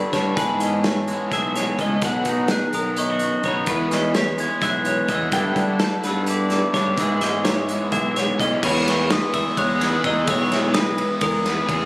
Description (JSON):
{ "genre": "math rock and midwest emo", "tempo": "254 BPM (eighths)", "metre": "7/8", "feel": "straight", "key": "unclear", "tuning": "A4 = 436 Hz", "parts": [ { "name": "glockenspiel with hard plastic mallets", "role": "melody", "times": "0.0-11.7 s", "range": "G#5 to B6", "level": "-26 LUFS", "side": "left 1 dB", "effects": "slapback echo" }, { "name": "twangy electric guitar", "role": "accompaniment", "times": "0.0-11.9 s", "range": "E2 to G#4", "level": "-27 LUFS", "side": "right 1 dB", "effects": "warbly pitch drift" }, { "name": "twelve-string electric guitar", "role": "arpeggios", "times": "0.0-11.9 s", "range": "G#4 to G5", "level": "-26 LUFS", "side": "left 1 dB", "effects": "vibrato effect" }, { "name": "crunchy overdriven guitar", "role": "riff", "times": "0.0-11.9 s", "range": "G2 to G#4", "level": "-28 LUFS", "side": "equal", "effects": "harmonic tremolo" }, { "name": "fuzz fingered electric bass", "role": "bass", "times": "0.1-11.9 s", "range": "B1 to G3", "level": "-25 LUFS", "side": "equal", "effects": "overdrive" }, { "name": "loose indie drum kit", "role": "drums", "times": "0.1-11.8 s", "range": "crash cymbal, hi-hat, kick drum, ride cymbal, snare drum", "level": "-25 LUFS", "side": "equal", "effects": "none" } ], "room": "little or no reverb", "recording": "recorded on a phone in the room, studio reverb, compression", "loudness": "-18 LUFS", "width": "side -22 dB against mid", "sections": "0.0-8.6 A section; 8.6-11.9 B section", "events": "none", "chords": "0.4 E6/G#; 2.0 Bmaj7; 3.7 E6; 5.3 G6; 7.0 E6/G#; 8.6 Emaj7" }